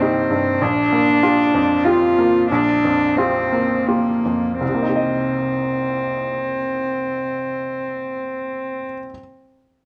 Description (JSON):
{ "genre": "neoclassical piano and strings", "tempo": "79-100 BPM", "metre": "3/4", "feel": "rubato", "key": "C minor", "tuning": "A4 = 441 Hz", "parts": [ { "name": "rich cello", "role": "second line", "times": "0.0-8.9 s", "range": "Bb3 to F4", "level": "-21 LUFS", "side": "equal", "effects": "none" }, { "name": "bright upright piano", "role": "accompaniment", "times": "0.0-9.2 s", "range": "Bb1 to Eb5", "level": "-24 LUFS", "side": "equal", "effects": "none" } ], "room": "light reverb", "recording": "worn, warbling old tape, cassette tape, warbly pitch drift", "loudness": "-19 LUFS", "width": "mono", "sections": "0.0-4.6 A section; 4.6-9.1 B section", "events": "slowing down 0.0-4.6", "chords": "0.0 Cm7; 0.6 Gm7/Bb; 4.6 Cm7" }